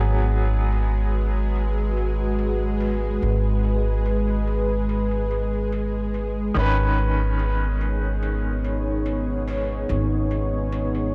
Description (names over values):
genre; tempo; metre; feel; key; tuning
trip hop; 72 BPM; 4/4; straight; G# minor; A4 = 440 Hz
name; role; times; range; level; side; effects
bright upright piano; accompaniment; 0.0-11.1 s; D#3 to B4; -32 LUFS; equal; tremolo, vintage 12-bit sampler grit, tape echo
deep dark ambient pad; sustained chords; 0.1-11.1 s; G#3 to C#5; -30 LUFS; equal; chorus, built-in reverb
upright bass; bass; 0.0-11.1 s; G#1; -25 LUFS; equal; none
bowed-like drone; texture; 0.1-11.1 s; G#3 to G#4; -37 LUFS; equal; built-in reverb
electronic hi-hat; drums; 0.3-11.1 s; none; -50 LUFS; equal; low-pass filter on hats, low-pass filter on room
room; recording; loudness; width
small room ambience; dry, gritty hardware recording; -23 LUFS; mono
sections
0.0-11.1 A section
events
none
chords
0.0 G#m7; 6.6 Badd9/G#